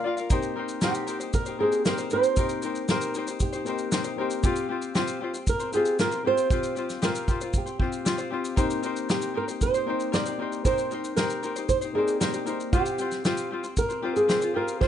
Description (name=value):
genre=acoustic pop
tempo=116 BPM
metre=4/4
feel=straight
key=C minor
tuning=A4 = 440 Hz
part: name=dark upright piano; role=accompaniment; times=0.0-14.9 s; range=Bb3 to D5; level=-34 LUFS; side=left 5 dB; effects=none
part: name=tenor ukulele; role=accompaniment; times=0.0-14.9 s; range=C4 to F5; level=-30 LUFS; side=left 4 dB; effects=none
part: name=natural country drum kit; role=drums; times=0.2-14.9 s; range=kick drum, shaker, snare drum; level=-27 LUFS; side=equal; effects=none
part: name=flamenco guitar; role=melody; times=0.3-14.9 s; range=G4 to D5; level=-27 LUFS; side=right 2 dB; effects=plate reverb
room=light reverb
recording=nothing above 10.5 kHz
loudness=-24 LUFS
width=side -10 dB against mid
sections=0.3-14.9 A section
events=none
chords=0.3 Cm7; 4.4 Fsus2; 8.6 Cm7; 12.7 Fsus2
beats=| 0.30 0.82 1.34 1.85 | 2.37 2.89 3.40 3.92 | 4.44 4.95 5.47 5.99 | 6.50 7.02 7.54 8.06 | 8.57 9.09 9.61 10.13 | 10.65 11.17 11.69 12.21 | 12.73 13.25 13.77 14.29 | 14.81